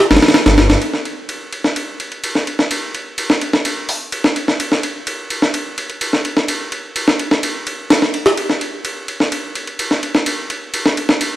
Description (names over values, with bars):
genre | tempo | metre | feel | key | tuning
breakbeat, breaks | 127 BPM | 4/4 | straight | unclear | A4 = 442 Hz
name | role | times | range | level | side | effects
phased detuned saw bass | bass | 0.1-0.8 s | G1 | -14 LUFS | equal | phaser
breakbeat sampler-style drum kit | drums | 0.1-11.3 s | hi-hat, ride cymbal, snare drum | -15 LUFS | equal | high-pass filter on snare, studio reverb, high-pass filter on cymbals, high-pass filter on kick, high-pass filter on hats
room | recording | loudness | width
light reverb, digital ambience | dry, gritty hardware recording, vinyl crackle | -15 LUFS | side -14 dB against mid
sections
0.8-11.4 A section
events
none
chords
none